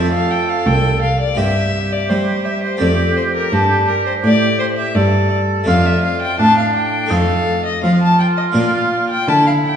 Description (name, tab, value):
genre	classical, baroque-style sonata movement with continuo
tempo	84 BPM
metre	4/4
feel	straight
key	F major, D minor from 5.7 s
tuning	A4 = 440 Hz
part	warm violin	melody	0.0-9.8 s	A4 to A5	-18 LUFS	left 4 dB	none
part	warm oboe	second line	0.0-9.8 s	D4 to A4	-20 LUFS	right 5 dB	none
part	harpsichord	accompaniment	0.0-9.8 s	C2 to C5	-22 LUFS	left 1 dB	none
part	rich cello	bass	0.0-9.8 s	C2 to G3	-17 LUFS	right 1 dB	none
room	wet recital hall reverb, RT60 1.7 s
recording	heard from further back in the room, nothing above 10.3 kHz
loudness	-13 LUFS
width	side -8 dB against mid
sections	0.0-9.8 A section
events	none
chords	0.0 F; 1.4 C5/G; 2.8 F; 5.7 Dm/F; 7.1 F7; 8.6 Bb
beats	0.67 1.38 2.10 | 2.81 3.52 4.24 4.96 | 5.68 6.39 7.11 7.84 | 8.56 9.28